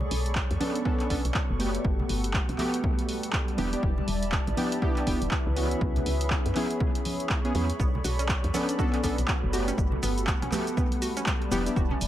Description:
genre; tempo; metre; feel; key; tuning
deep house; 121 BPM; 4/4; swing 60% on 16ths; B minor; A4 = 440 Hz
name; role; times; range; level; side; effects
hollow soft pad; sustained chords; 0.0-12.1 s; G4 to B5; -38 LUFS; left 1 dB; chorus, sidechain pumping
woody FM bass; bass; 0.0-12.1 s; E1 to F#2; -30 LUFS; equal; sidechain pumping
congas; percussion; 0.0-12.0 s; none; -38 LUFS; right 2 dB; sidechain pumping on perc, analog delay
granular cloud pad; texture; 0.0-12.1 s; G3 to C#6; -36 LUFS; left 1 dB; built-in reverb, sidechain pumping
punchy analog drum machine; drums; 0.1-12.1 s; handclaps, hi-hat, shaker; -34 LUFS; right 1 dB; analog delay
electronic kick drum; drums; 0.4-11.9 s; none; -28 LUFS; equal; none
warm analog keys; stabs; 0.6-11.8 s; A3 to A4; -31 LUFS; equal; chorus, sidechain pumping, analog delay
analog pluck; arpeggios; 7.8-11.9 s; B3 to F#4; -36 LUFS; right 2 dB; chorus, sidechain pumping, tape echo
room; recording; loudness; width
light reverb; echo-heavy mix; -25 LUFS; side -12 dB against mid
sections
0.0-12.1 A section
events
none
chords
0.0 Bm9; 1.8 Gmaj9; 3.6 Em7; 5.6 C#m7; 7.8 Bm9; 9.8 Gmaj9; 11.5 Em7

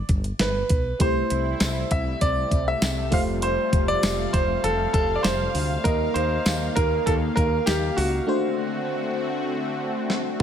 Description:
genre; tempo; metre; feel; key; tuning
1980s-style pop; 99 BPM; 4/4; straight; unclear; A4 = 440 Hz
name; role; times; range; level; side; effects
bright grand piano; melody; 0.0-10.1 s; F#4 to F5; -25 LUFS; right 1 dB; none
woody fretless electric bass; bass; 0.1-8.2 s; F1 to Eb2; -27 LUFS; equal; none
clean 12-bit digital drum machine; drums; 0.1-10.4 s; hi-hat, kick drum, snare drum, toms; -24 LUFS; equal; none
FM electric piano; accompaniment; 1.0-10.4 s; A3 to F5; -29 LUFS; left 1 dB; chorus, phaser
lush unison pad; sustained chords; 1.0-10.4 s; C3 to F5; -30 LUFS; left 1 dB; chorus
tambourine; percussion; 1.6-7.8 s; none; -39 LUFS; left 2 dB; none
room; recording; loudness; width
light reverb, digital ambience; none; -21 LUFS; side -9 dB against mid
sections
0.0-10.4 A section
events
break 8.3-10.4; drum fill 10.1-10.4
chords
0.0 G; 1.0 C6; 3.1 Fadd9; 5.9 Ebsus2; 8.3 D7

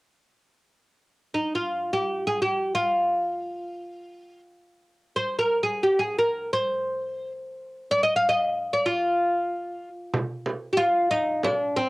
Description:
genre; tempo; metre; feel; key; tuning
Turkish makam ensemble; free time; none; none; F makam huseyni; A4 = 441 Hz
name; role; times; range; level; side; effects
oud; melody; 1.3-11.9 s; C4 to F5; -23 LUFS; equal; cassette tape
frame drum; percussion; 10.1-11.6 s; none; -28 LUFS; right 2 dB; none
room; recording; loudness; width
moderate small room reverb, RT60 0.5 s; home recording on cassette; -23 LUFS; side -22 dB against mid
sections
1.0-10.1 A section; 10.1-11.9 B section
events
none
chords
none

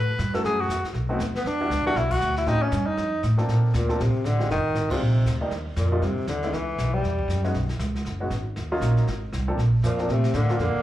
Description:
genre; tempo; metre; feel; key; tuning
jazz, small-group swing and bop; 236 BPM; 4/4; swing 59% on 8ths; unclear; A4 = 442 Hz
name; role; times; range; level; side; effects
breathy tenor saxophone; melody; 0.0-7.4, 9.8-10.8 s; Bb2 to B4; -26 LUFS; left 1 dB; plate reverb, slapback echo
upright bass; bass; 0.0-10.8 s; F1 to Bb2; -24 LUFS; equal; none
jazz brush drum kit; drums; 0.2-10.8 s; brushed snare drum, crash cymbal, hi-hat, kick drum, ride cymbal, snare drum; -37 LUFS; left 1 dB; none
warm baby grand piano; accompaniment; 0.3-10.6 s; F3 to A4; -30 LUFS; equal; plate reverb, slapback echo
clear alto saxophone; second line; 9.8-10.8 s; F3 to Bb3; -29 LUFS; right 3 dB; plate reverb, slapback echo
room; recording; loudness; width
light reverb; live gig heard through the venue's PA, club ambience; -22 LUFS; side -14 dB against mid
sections
0.0-3.5 A section; 3.5-10.8 B section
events
band accent 2.1, 4.9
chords
0.4 F#m7; 0.9 B7b9; 1.5 Em9; 2.5 A7alt; 3.0 F7; 3.5 Bbmaj7; 4.5 Fm7; 5.0 Bbadd9; 5.5 Ebmaj9; 6.5 Dbm7; 7.0 Em69; 7.5 Bsus2; 8.6 Ebm7; 9.1 Abadd9; 9.6 Bbmaj7

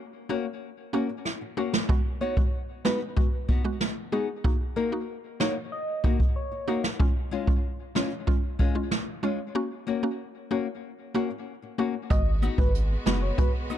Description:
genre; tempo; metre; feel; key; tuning
dancehall; 94 BPM; 4/4; straight; G# dorian; A4 = 440 Hz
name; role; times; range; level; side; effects
mallet-like synth pluck; accompaniment; 0.3-13.5 s; G#3 to F#4; -31 LUFS; right 2 dB; chorus
flamenco guitar; arpeggios; 0.3-13.8 s; G#3 to F#4; -33 LUFS; left 8 dB; tape echo
jazz brush drum kit; drums; 1.3-13.5 s; hi-hat, kick drum, rim click, snare drum; -25 LUFS; equal; none
soft struck synth lead; melody; 2.2-6.8, 12.1-13.5 s; G#4 to D#5; -33 LUFS; equal; chorus, tape echo
clear studio string section; sustained chords; 12.1-13.8 s; G#3 to F#4; -39 LUFS; right 1 dB; sidechain pumping
saturated sub bass; bass; 12.1-13.3 s; F#1 to G#1; -26 LUFS; equal; none
woodblock and cabasa; percussion; 12.1-13.8 s; none; -42 LUFS; right 10 dB; none
room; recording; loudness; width
small room ambience; dark, warm production; -25 LUFS; side -11 dB against mid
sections
0.0-12.1 A section; 12.1-13.8 B section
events
break 0.0-1.9, 9.6-12.1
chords
0.0 F#; 1.9 G#m7; 4.4 D#m; 7.0 C#; 9.6 F#; 12.1 G#m7

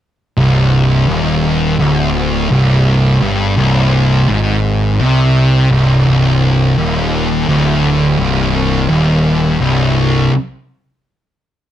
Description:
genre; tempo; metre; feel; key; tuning
metal; 84 BPM; 4/4; straight; C minor; A4 = 439 Hz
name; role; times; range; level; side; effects
thick fuzz guitar; riff; 0.4-10.3 s; C2 to C3; -13 LUFS; left 3 dB; distortion
thick fuzz guitar; riff; 0.4-10.3 s; C2 to C3; -16 LUFS; right 7 dB; distortion
fuzz picked electric bass; bass; 0.4-10.3 s; C1 to C2; -18 LUFS; equal; overdrive
room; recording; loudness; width
light reverb; none; -10 LUFS; side -11 dB against mid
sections
0.4-11.7 A section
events
stop 10.3-11.7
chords
0.4 Cm

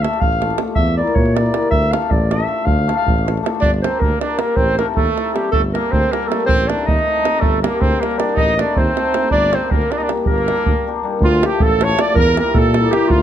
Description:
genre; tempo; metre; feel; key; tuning
balkan folk, Balkan wedding band; 316 BPM (eighths); 5/8; straight; D harmonic minor, G minor from 3.6 s; A4 = 442 Hz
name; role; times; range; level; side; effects
mellow clarinet; melody; 0.0-13.2 s; F4 to F5; -19 LUFS; equal; none
cimbalom; accompaniment; 0.0-13.1 s; E3 to Bb4; -22 LUFS; left 5 dB; none
mellow tuba; bass; 0.0-13.2 s; G1 to Bb2; -20 LUFS; equal; none
davul; percussion; 0.0-13.2 s; none; -19 LUFS; right 2 dB; none
clear trumpet; second line; 3.6-13.2 s; G3 to D5; -24 LUFS; right 6 dB; none
room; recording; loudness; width
light reverb; close, detailed microphones; -14 LUFS; side -10 dB against mid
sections
0.0-3.6 A section; 3.6-11.2 B section; 11.2-13.2 C section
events
clarinet solo 0.0-3.6; break 10.7-11.2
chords
0.0 Dm; 0.8 Edim; 1.7 Dm; 3.6 Gm; 4.6 Adim; 5.5 Gm; 6.5 Adim; 7.4 Gm; 8.4 Adim; 9.3 Gm; 11.2 Dm; 12.2 Edim

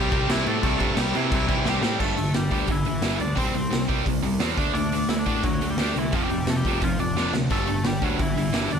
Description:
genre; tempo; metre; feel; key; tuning
punk rock; 174 BPM; 4/4; straight; unclear; A4 = 437 Hz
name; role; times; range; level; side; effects
biting lead guitar; melody; 0.0-8.8 s; E3 to D5; -29 LUFS; left 1 dB; overdrive
overdriven electric guitar; riff; 0.0-8.8 s; F2 to D4; -28 LUFS; left 13 dB; none
tight distorted guitar; riff; 0.0-8.8 s; F2 to D4; -27 LUFS; right 15 dB; distortion
overdriven picked electric bass; bass; 0.0-8.8 s; E1 to C3; -29 LUFS; equal; none
raw garage drum kit; drums; 0.1-8.8 s; crash cymbal, hi-hat, kick drum, snare drum, splash cymbal; -27 LUFS; equal; none
room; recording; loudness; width
light reverb; none; -21 LUFS; side -7 dB against mid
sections
0.0-2.0 A section; 2.0-8.8 B section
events
drum fill 1.7-2.0, 7.2-7.5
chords
0.0 C; 2.0 G5; 3.4 C; 4.6 D; 6.1 F5; 7.5 G5

